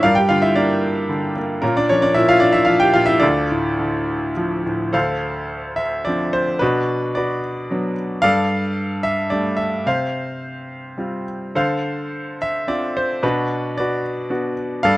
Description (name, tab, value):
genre	classical, lyrical solo piano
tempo	103-114 BPM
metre	3/4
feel	rubato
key	D harmonic minor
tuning	A4 = 440 Hz
part	bright grand piano	solo	0.0-15.0 s	D2 to G5	-17 LUFS	equal	none
room	light reverb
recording	close, detailed microphones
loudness	-17 LUFS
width	side -18 dB against mid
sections	0.0-4.9 A section; 4.9-15.0 B section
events	none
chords	0.0 Gm7; 1.6 Bbm; 3.2 Dm; 4.9 Dm7; 6.6 Bm; 8.2 Gsus2; 9.9 Csus4; 11.6 Dm7; 13.2 Bm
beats	| 0.03 0.56 1.09 | 1.63 2.16 2.69 | 3.23 3.79 4.36 | 4.95 5.51 6.07 | 6.62 7.17 7.71 | 8.24 8.78 9.32 | 9.86 10.41 10.98 | 11.55 12.12 12.68 | 13.23 13.77 14.31 | 14.84